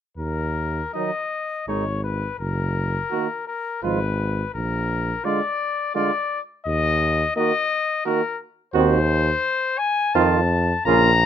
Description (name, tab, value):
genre	classical, brass quintet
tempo	84 BPM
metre	3/4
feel	rubato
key	Eb minor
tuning	A4 = 440 Hz
part	warm trumpet	melody	0.2-11.3 s	Bb4 to Bb5	-23 LUFS	left 5 dB	none
part	warm bass trombone	bass	0.2-11.3 s	Gb1 to F2	-23 LUFS	right 1 dB	none
part	warm flugelhorn	second line	0.9-11.1 s	Eb4 to Gb4	-24 LUFS	right 11 dB	none
part	clear trombone	accompaniment	0.9-11.1 s	Db3 to F3	-26 LUFS	right 7 dB	none
part	mellow French horn	accompaniment	1.0-11.1 s	Gb3 to C4	-25 LUFS	left 1 dB	none
room	light reverb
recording	close, detailed microphones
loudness	-20 LUFS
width	side -9 dB against mid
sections	0.2-11.3 A section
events	none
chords	0.2 Eb5; 1.7 Abm; 2.4 Ebm/Gb (rootless); 3.8 Fdim/Ab; 4.5 Bb7; 6.7 Eb5; 8.7 Cm/Eb; 10.1 F7